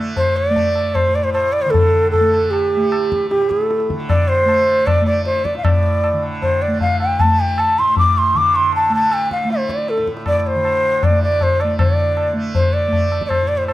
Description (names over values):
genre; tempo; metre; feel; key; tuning
indian classical, Hindustani; 155 BPM; 4/4; straight; unclear; A4 = 443 Hz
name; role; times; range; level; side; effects
tanpura; drone; 0.0-13.7 s; A2 to A3; -25 LUFS; right 1 dB; none
breathy mellow bansuri; melody; 0.2-13.7 s; G4+20c to D6; -16 LUFS; equal; none
tabla; percussion; 0.2-13.7 s; none; -19 LUFS; left 2 dB; none
room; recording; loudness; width
moderate recital hall reverb, RT60 1.4 s; close, detailed microphones; -14 LUFS; side -15 dB against mid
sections
0.0-11.8 A section; 11.8-13.7 A section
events
speeding up 0.0-13.7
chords
none